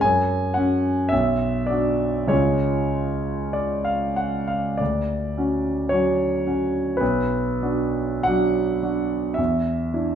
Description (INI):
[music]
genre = classical, romantic nocturne for solo piano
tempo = 44-57 BPM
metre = 4/4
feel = rubato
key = unclear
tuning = A4 = 441 Hz
[part]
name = clear concert grand piano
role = solo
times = 0.0-10.2 s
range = B1 to G#5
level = -20 LUFS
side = equal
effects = none
[sound]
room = wet large studio reverb, RT60 0.8 s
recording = heard from further back in the room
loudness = -20 LUFS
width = side -8 dB against mid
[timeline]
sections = 0.0-10.2 A section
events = none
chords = 0.0 F#5; 1.1 Bm; 2.3 C#; 4.8 Dmaj7; 7.0 Bm; 9.4 E7(no3)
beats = | 0.03 1.12 2.31 3.56 | 4.80 5.92 7.01 8.27 | 9.38